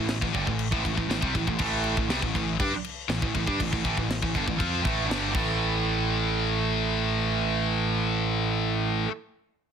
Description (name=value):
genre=heavy metal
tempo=120 BPM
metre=4/4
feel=straight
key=A minor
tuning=A4 = 440 Hz
part: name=scooped high-gain guitar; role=riff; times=0.0-9.1 s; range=G2 to F4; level=-28 LUFS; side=left 11 dB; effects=distortion
part: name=tight distorted guitar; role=riff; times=0.0-9.1 s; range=G2 to F4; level=-29 LUFS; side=right 12 dB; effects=distortion
part: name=growling picked electric bass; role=bass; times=0.0-9.1 s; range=G1 to G2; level=-30 LUFS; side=equal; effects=overdrive
part: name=tight metal drum kit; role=drums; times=0.1-5.5 s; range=crash cymbal, kick drum, snare drum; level=-31 LUFS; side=left 1 dB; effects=none
room=little or no reverb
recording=dense, heavily limited modern master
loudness=-24 LUFS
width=side -7 dB against mid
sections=0.0-5.6 A section; 5.6-9.6 B section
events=none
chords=0.0 Am; 5.3 A5